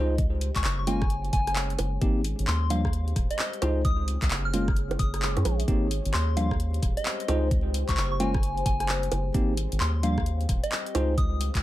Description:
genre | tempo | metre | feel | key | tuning
UK garage, two-step garage | 131 BPM | 4/4 | swing 63% on 16ths | unclear | A4 = 439 Hz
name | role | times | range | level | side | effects
bell-like tine electric piano | stabs | 0.0-11.1 s | F3 to C5 | -30 LUFS | equal | fast stereo tremolo, tape echo
soft dub sub bass | bass | 0.0-11.6 s | Eb1 to Gb2 | -27 LUFS | equal | none
deep dark ambient pad | texture | 0.2-11.6 s | G4 to F5 | -38 LUFS | equal | chorus, built-in reverb, sidechain pumping
electronic kick drum | drums | 0.2-11.6 s | none | -27 LUFS | equal | none
house drum kit | drums | 0.2-11.6 s | bongos, handclaps, hi-hat, rim click | -32 LUFS | equal | none
soft synth bell | melody | 0.6-11.3 s | Eb5 to F6 | -33 LUFS | left 1 dB | chorus, tremolo, tape echo
room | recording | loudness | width
light reverb | vinyl crackle | -24 LUFS | side -15 dB against mid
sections
0.0-11.6 A section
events
none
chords
0.0 Dbmaj9; 0.9 Gbsus2; 2.0 Abmaj9; 2.7 Ebmaj9; 3.6 Dbmaj9; 4.5 Gbadd9; 5.7 Abmaj9; 6.4 Ebmaj9; 7.3 Dbmaj9; 8.2 Gbsus2; 9.3 Abmaj9; 10.0 Ebmaj9; 10.9 Dbmaj9

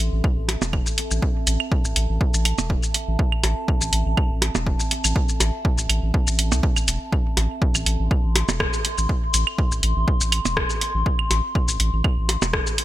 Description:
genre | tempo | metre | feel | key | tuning
minimal techno | 122 BPM | 4/4 | swing 54% on 16ths | A minor | A4 = 440 Hz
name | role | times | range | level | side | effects
saturated sub bass | bass | 0.0-12.6 s | E1 to C2 | -23 LUFS | equal | sidechain pumping
warbly tape-like pad | texture | 0.0-12.8 s | C4 to C6 | -30 LUFS | equal | chorus, built-in reverb, sidechain pumping
electronic kick drum | drums | 0.2-12.6 s | none | -22 LUFS | equal | none
punchy analog drum machine | drums | 0.5-12.8 s | hi-hat, rim click, shaker | -23 LUFS | equal | gated reverb
percussion blips and claves | percussion | 0.5-12.5 s | none | -26 LUFS | right 4 dB | ping-pong delay
room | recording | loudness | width
little or no reverb | bright 1980s-style digital production | -19 LUFS | side -14 dB against mid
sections
0.0-12.8 A section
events
none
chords
0.0 Am

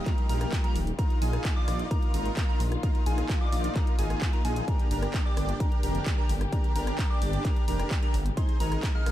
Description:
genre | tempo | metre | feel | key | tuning
EDM, festival progressive house | 130 BPM | 4/4 | straight | unclear | A4 = 445 Hz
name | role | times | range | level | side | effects
dark studio string section | sustained chords | 0.0-9.1 s | C3 to G4 | -38 LUFS | left 2 dB | sidechain pumping
plucky unison lead | arpeggios | 0.0-9.1 s | Ab5 to F6 | -38 LUFS | equal | sidechain pumping, ping-pong delay
dense compressed supersaw | riff | 0.0-9.1 s | G3 to F5 | -35 LUFS | right 1 dB | sidechain pumping, ping-pong delay
downlifter | sound effects | 0.0-1.0 s | none | barely audible | none | none
big-room dance drum kit | drums | 0.1-9.1 s | handclaps, hi-hat, rim click | -38 LUFS | equal | none
electronic kick drum | drums | 0.1-8.9 s | none | -27 LUFS | equal | none
wide detuned saw bass | bass | 0.3-9.1 s | Eb1 to Bb1 | -29 LUFS | equal | chorus, sidechain pumping
room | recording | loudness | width
little or no reverb | dark, warm production | -25 LUFS | side -13 dB against mid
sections
0.0-9.1 A section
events
none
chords
0.0 Ebadd9; 1.0 Bbsus4; 4.7 Gm; 8.4 Ab

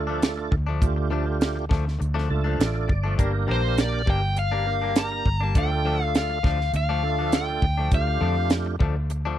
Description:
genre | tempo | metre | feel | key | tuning
straight-eighth soul blues | 101 BPM | 4/4 | straight | D minor | A4 = 440 Hz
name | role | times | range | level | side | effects
tonewheel organ | accompaniment | 0.0-8.8 s | A3 to A5 | -29 LUFS | right 7 dB | overdrive, chorus vibrato, slow rotary speaker
vintage muted fingered electric bass | bass | 0.0-9.4 s | G1 to F2 | -25 LUFS | equal | none
direct-recorded clean electric guitar | stabs | 0.1-9.4 s | G2 to D4 | -32 LUFS | left 7 dB | spring reverb
tight funk drum kit | drums | 0.2-9.2 s | hi-hat, kick drum, snare drum | -22 LUFS | equal | none
overdriven electric guitar | melody | 3.5-8.5 s | C5 to Bb5 | -27 LUFS | left 2 dB | none
room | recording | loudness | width
little or no reverb | dry, close 1970s-style studio recording | -21 LUFS | side -12 dB against mid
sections
0.0-9.4 A section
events
tonewheel organ fill 2.0-3.2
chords
0.0 Dm; 3.2 Gm; 5.6 Dm

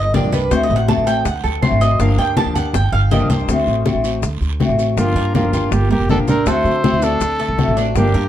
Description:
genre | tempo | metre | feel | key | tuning
latin, Cuban son and guajira | 161 BPM | 4/4 | straight | G minor | A4 = 440 Hz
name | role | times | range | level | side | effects
Cuban tres | arpeggios | 0.0-8.3 s | A3 to A5 | -22 LUFS | right 3 dB | tape echo
upright bass | bass | 0.0-8.3 s | F1 to D3 | -19 LUFS | right 1 dB | none
fingerpicked old ladder-braced acoustic guitar | accompaniment | 0.1-8.3 s | D3 to G4 | -19 LUFS | left 3 dB | none
bongos | percussion | 0.1-8.3 s | none | -27 LUFS | left 9 dB | none
congas | percussion | 0.1-8.3 s | none | -21 LUFS | left 1 dB | none
guiro | percussion | 0.1-8.3 s | none | -35 LUFS | right 8 dB | none
maracas | percussion | 0.1-8.3 s | none | -37 LUFS | left 7 dB | none
clear trumpet | melody | 5.0-8.3 s | F4 to C5 | -21 LUFS | equal | none
nylon-string guitar | second line | 5.0-8.3 s | Bb3 to F#4 | -22 LUFS | right 6 dB | none
room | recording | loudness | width
moderate studio reverb, RT60 0.5 s | dark, warm production | -14 LUFS | side -11 dB against mid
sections
0.0-5.0 A section; 5.0-8.3 B section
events
Cuban tres solo 0.0-5.0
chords
0.0 Gm7; 0.5 D7; 2.0 Gm7; 3.5 D7; 5.0 Gm7; 6.5 D7

